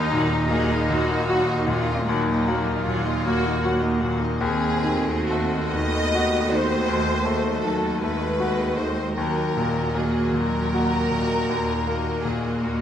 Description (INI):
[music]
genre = classical, romantic movement for piano and orchestra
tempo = 44-54 BPM (dotted quarters)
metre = 12/8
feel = rubato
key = Eb minor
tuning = A4 = 440 Hz
[part]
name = bright grand piano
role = melody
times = 0.0-12.8 s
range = Eb2 to Gb4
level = -24 LUFS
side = left 2 dB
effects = none
[part]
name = rich symphonic violin section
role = melody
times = 0.0-12.8 s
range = Eb5 to Gb5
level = -38 LUFS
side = left 2 dB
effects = none
[part]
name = warm symphonic violin section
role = second line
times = 0.0-12.8 s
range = Eb4 to Eb5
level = -27 LUFS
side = left 1 dB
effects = none
[part]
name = rich symphonic viola section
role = accompaniment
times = 0.0-12.8 s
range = Gb3 to Gb4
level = -29 LUFS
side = right 3 dB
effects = none
[part]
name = clear symphonic cello section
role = bass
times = 0.0-12.8 s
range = Gb3 to Eb4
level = -30 LUFS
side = right 1 dB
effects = none
[part]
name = warm symphonic double bass section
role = bass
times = 0.0-12.8 s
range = Eb2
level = -29 LUFS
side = right 2 dB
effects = none
[sound]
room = moderate recital hall reverb, RT60 1.4 s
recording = close, detailed microphones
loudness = -20 LUFS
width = side -9 dB against mid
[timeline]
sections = 0.0-12.8 A section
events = none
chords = 0.0 Ebm; 4.4 Ebdim7; 9.2 Ebm